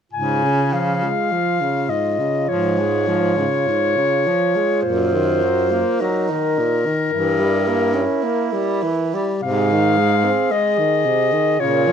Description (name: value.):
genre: classical, lyrical piece for single-reed quartet.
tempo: 48-56 BPM.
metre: 4/4.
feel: rubato.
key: Db major.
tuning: A4 = 440 Hz.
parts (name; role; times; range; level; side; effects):
warm clarinet; melody; 0.1-11.9 s; Bb4 to Ab5; -20 LUFS; left 5 dB; none.
clear alto saxophone; second line; 0.1-11.9 s; Eb4 to Ab4; -24 LUFS; right 10 dB; none.
clear tenor saxophone; accompaniment; 0.1-11.9 s; Ab2 to Db4; -22 LUFS; equal; none.
clear baritone saxophone; bass; 0.1-11.9 s; Gb2 to Db3; -22 LUFS; right 2 dB; none.
room: light reverb.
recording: minimal, uncompressed stereo recording.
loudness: -16 LUFS.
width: side -8 dB against mid.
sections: 0.1-11.9 A section.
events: none.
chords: 0.1 Db/Ab; 4.8 Ebm/Gb; 7.1 Gdim7; 9.4 Ab.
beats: | 0.13 1.32 2.48 3.66 | 4.84 6.00 7.12 8.23 | 9.43 10.52 11.60.